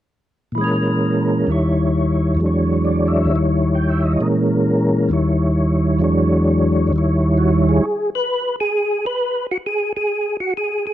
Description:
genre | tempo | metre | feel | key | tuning
jazz | 132 BPM | 4/4 | swing 66% on 8ths | unclear | A4 = 440 Hz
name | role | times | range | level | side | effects
percussive tonewheel organ | solo | 0.5-10.9 s | D#2 to G5 | -16 LUFS | equal | slow rotary speaker, chorus vibrato
room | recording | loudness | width
little or no reverb | dry, close 1970s-style studio recording | -16 LUFS | side -12 dB against mid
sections
0.6-7.8 A section; 7.8-10.9 B section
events
none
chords
0.6 A#m7b5; 1.5 D#7b9; 2.4 E13; 3.3 D#7b9; 4.2 A#m7b5; 5.1 D#7b9; 6.0 E13; 6.9 D#7b9; 7.8 N.C.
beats
| 0.57 1.02 1.48 1.93 | 2.38 2.84 3.29 3.74 | 4.20 4.65 5.10 5.56 | 6.01 6.46 6.92 7.37 | 7.82 8.28 8.73 9.18 | 9.63 10.09 10.54

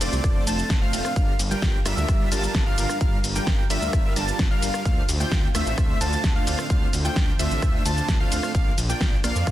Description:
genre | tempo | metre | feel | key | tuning
EDM, festival progressive house | 130 BPM | 4/4 | straight | unclear | A4 = 440 Hz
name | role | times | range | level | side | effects
lush unison pad | sustained chords | 0.0-9.5 s | D3 to Bb4 | -36 LUFS | equal | chorus, phaser, sidechain pumping
wide unison lead | arpeggios | 0.0-9.5 s | D5 to A5 | -30 LUFS | equal | wide subtle chorus, sidechain pumping, tape echo
dense compressed supersaw | riff | 0.0-9.5 s | G3 to A5 | -29 LUFS | right 1 dB | sidechain pumping, tape echo
detuned saw bass | bass | 0.0-9.5 s | F1 to F2 | -28 LUFS | equal | sidechain pumping
big-room dance drum kit | drums | 0.0-9.5 s | hi-hat, ride cymbal, rim click, shaker, snare drum | -29 LUFS | equal | studio reverb
electronic kick drum | drums | 0.2-9.5 s | none | -22 LUFS | equal | studio reverb
room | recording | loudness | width
little or no reverb | dense, heavily limited modern master | -20 LUFS | side -14 dB against mid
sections
0.0-9.5 A section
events
none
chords
0.0 F; 1.2 Gm7; 4.9 Dm7; 8.5 Bb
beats
0.24 0.70 | 1.16 1.62 2.09 2.55 | 3.01 3.47 3.93 4.39 | 4.86 5.32 5.78 6.24 | 6.70 7.16 7.62 8.09 | 8.55 9.01 9.47

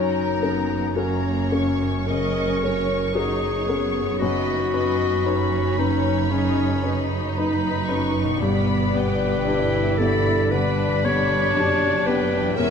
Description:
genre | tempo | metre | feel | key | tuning
cinematic | 57 BPM | 4/4 | rubato | unclear | A4 = 440 Hz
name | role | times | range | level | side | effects
rich symphonic violin section | melody | 0.0-12.7 s | G5 to C#6 | -32 LUFS | left 2 dB | none
clear clarinet | second line | 0.0-12.7 s | C#4 to C#5 | -25 LUFS | left 1 dB | none
warm symphonic violin section | second line | 0.0-12.7 s | A#4 to E5 | -31 LUFS | left 2 dB | none
felt-muted upright piano | accompaniment | 0.0-12.7 s | E2 to B4 | -26 LUFS | left 3 dB | none
rich symphonic viola section | accompaniment | 0.0-12.7 s | A#3 to E4 | -30 LUFS | equal | none
concert harp | arpeggios | 0.0-12.7 s | E2 to B4 | -32 LUFS | left 9 dB | none
rich studio cello section | bass | 0.0-12.7 s | E2 to G2 | -28 LUFS | right 3 dB | none
warm studio double bass section | bass | 0.0-12.7 s | E1 to G1 | -29 LUFS | right 5 dB | none
room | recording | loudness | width
moderate scoring stage reverb, RT60 1.8 s | none | -19 LUFS | side -6 dB against mid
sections
0.0-12.7 A section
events
none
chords
0.0 F#6; 4.2 Badd9/F#; 8.4 G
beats
0.96 2.08 3.15 | 4.20 5.26 6.30 7.36 | 8.42 9.46 10.51 11.56 | 12.57

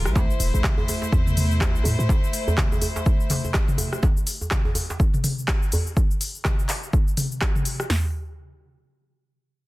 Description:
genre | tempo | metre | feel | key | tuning
afro house | 124 BPM | 4/4 | swing 59% on 16ths | unclear | A4 = 439 Hz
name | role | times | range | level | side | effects
rich chamber string section | sustained chords | 0.0-4.0 s | G3 to C5 | -30 LUFS | left 1 dB | sidechain pumping
warm 808-style bass | bass | 0.0-2.1 s | E1 to A2 | -22 LUFS | equal | sidechain pumping
afro-pop drum kit | drums | 0.1-7.9 s | handclaps, hi-hat, rim click, shaker, toms | -27 LUFS | left 1 dB | none
deep house drum kit | drums | 0.2-8.0 s | hi-hat, kick drum, snare drum, toms | -22 LUFS | equal | none
djembe | percussion | 0.2-5.8 s | none | -28 LUFS | right 1 dB | none
room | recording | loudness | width
little or no reverb | dense, heavily limited modern master | -20 LUFS | side -19 dB against mid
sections
0.0-7.9 A section; 7.9-9.7 B section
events
drop 0.0-7.9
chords
0.2 Am; 4.0 N.C.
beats
| 0.16 0.64 1.12 1.61 | 2.09 2.58 3.06 3.54 | 4.03 4.51 5.00 5.48 | 5.96 6.45 6.93 7.42 | 7.90

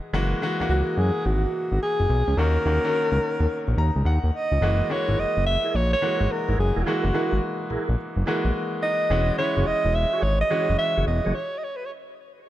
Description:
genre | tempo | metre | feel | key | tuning
R&B | 107 BPM | 4/4 | swing 65% on 16ths | unclear | A4 = 440 Hz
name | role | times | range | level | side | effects
bright baby grand piano | accompaniment | 0.0-11.4 s | D#3 to A#5 | -28 LUFS | left 1 dB | none
fat analog bass | bass | 0.1-11.3 s | E1 to F#2 | -22 LUFS | equal | none
mellow alto saxophone | melody | 0.7-11.9 s | E#4 to E5 | -25 LUFS | right 1 dB | none
tonewheel organ | stabs | 5.1-11.4 s | E4 to C#5 | -33 LUFS | right 4 dB | chorus vibrato, slow rotary speaker
room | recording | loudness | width
light reverb, studio ambience | dark, warm production | -21 LUFS | side -14 dB against mid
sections
0.0-4.6 A section; 4.6-12.5 B section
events
grand piano fill 3.5-4.6; stop 11.3-12.5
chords
0.1 F#9; 2.4 D#m7; 4.6 F#9; 9.1 E69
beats
| 0.13 0.69 1.25 1.81 | 2.37 2.94 3.50 4.06 | 4.62 5.18 5.74 6.30 | 6.86 7.42 7.98 8.54 | 9.10 9.66 10.22 10.79 | 11.35 11.91

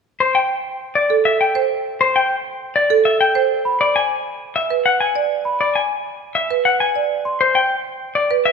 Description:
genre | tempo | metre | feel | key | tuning
classical, minimalist pattern music | 100 BPM | 3/4 | straight | A dorian | A4 = 440 Hz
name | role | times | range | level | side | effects
semi-hollow electric guitar | melody | 0.2-8.5 s | C5 to G#5 | -17 LUFS | left 3 dB | none
marimba with hard mallets | arpeggios | 1.1-8.5 s | A4 to D5 | -19 LUFS | right 7 dB | none
celesta | arpeggios | 3.7-7.4 s | B5 to C6 | -25 LUFS | right 2 dB | none
room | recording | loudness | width
moderate scoring stage reverb, RT60 2.1 s | minimal, uncompressed stereo recording | -16 LUFS | side -5 dB against mid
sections
0.0-8.5 A section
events
none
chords
0.0 Am7; 3.5 E7 (rootless); 7.1 Cmaj7(no3)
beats
0.50 1.10 | 1.70 2.30 2.90 | 3.50 4.10 4.70 | 5.30 5.90 6.50 | 7.10 7.70 8.30

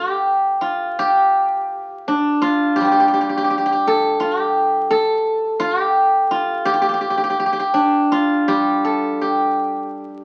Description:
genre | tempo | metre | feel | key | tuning
chinese traditional, Chinese solo plucked strings | 84 BPM | 4/4 | rubato | unclear | A4 = 440 Hz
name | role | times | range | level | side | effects
steel-string zither | solo | 0.0-10.2 s | G3 to A4 | -18 LUFS | equal | none
room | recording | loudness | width
moderate studio reverb, RT60 0.7 s | very old 78 rpm record, vinyl crackle | -18 LUFS | mono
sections
0.0-10.2 A section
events
none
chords
none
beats
0.64 1.37 2.10 | 2.82 3.53 4.23 4.93 | 5.63 6.35 7.06 7.78 | 8.50 9.23 9.99

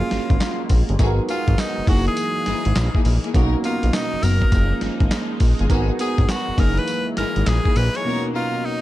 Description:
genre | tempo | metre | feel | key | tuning
R&B, new jack swing | 102 BPM | 4/4 | swing 65% on 16ths | unclear | A4 = 441 Hz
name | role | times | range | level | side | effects
edgy tenor saxophone | melody | 0.0-8.8 s | D#4 to C#5 | -26 LUFS | equal | ping-pong delay
bell-like tine electric piano | accompaniment | 0.0-8.8 s | B2 to A#4 | -27 LUFS | right 4 dB | analog chorus
sweeping resonant pad | sustained chords | 0.0-8.8 s | B2 to F#4 | -30 LUFS | equal | chorus
fat analog bass | bass | 0.0-7.9 s | F#1 to B1 | -20 LUFS | equal | none
dusty soul sampler-style drum kit | drums | 0.1-8.0 s | handclaps, hi-hat, kick drum, snare drum, tambourine | -21 LUFS | equal | none
warm studio string section | stabs | 1.0-8.5 s | A#3 to A#4 | -29 LUFS | left 5 dB | none
room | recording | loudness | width
little or no reverb | dark, warm production | -17 LUFS | side -15 dB against mid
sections
0.0-8.8 A section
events
break 8.1-8.8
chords
0.0 F#maj9; 1.0 G#m7; 1.9 F#13; 3.3 Bmaj7; 4.5 F#maj9; 5.7 G#m7; 6.6 F#13; 8.1 Bmaj7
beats
0.40 | 0.99 1.58 2.17 2.76 | 3.34 3.93 4.52 5.11 | 5.70 6.29 6.87 7.46 | 8.05 8.64

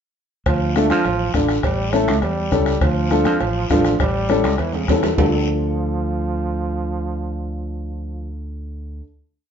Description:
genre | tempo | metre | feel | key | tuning
latin, cumbia | 203 BPM | 4/4 | straight | D harmonic minor | A4 = 440 Hz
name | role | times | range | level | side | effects
bright trombone | second line | 0.5-8.3 s | C#3 to A3 | -24 LUFS | right 4 dB | none
fingered electric bass | bass | 0.5-9.0 s | A1 to F2 | -23 LUFS | equal | none
bombo | percussion | 0.5-5.2 s | none | -24 LUFS | left 2 dB | none
cowbell and timbales | percussion | 0.5-5.3 s | none | -26 LUFS | right 3 dB | none
guiro | percussion | 0.5-5.3 s | none | -35 LUFS | left 4 dB | none
dark upright piano | accompaniment | 0.8-9.0 s | C#4 to A4 | -22 LUFS | left 2 dB | none
congas | percussion | 0.8-5.3 s | none | -30 LUFS | left 3 dB | none
room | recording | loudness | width
moderate studio reverb, RT60 0.7 s | band playing live in one room, nothing above 7.7 kHz | -17 LUFS | side -8 dB against mid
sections
0.5-5.2 groove; 5.2-7.5 final chord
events
drum fill 4.7-5.2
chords
0.5 Dm; 1.6 A7; 2.8 Dm; 4.0 A7; 5.2 Dm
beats
| 0.46 0.76 1.05 1.34 | 1.64 1.93 2.23 2.52 | 2.82 3.11 3.41 3.70 | 4.00 4.29 4.59 4.89 | 5.18 5.48 5.77 6.07 | 6.36 6.66 6.95 7.25

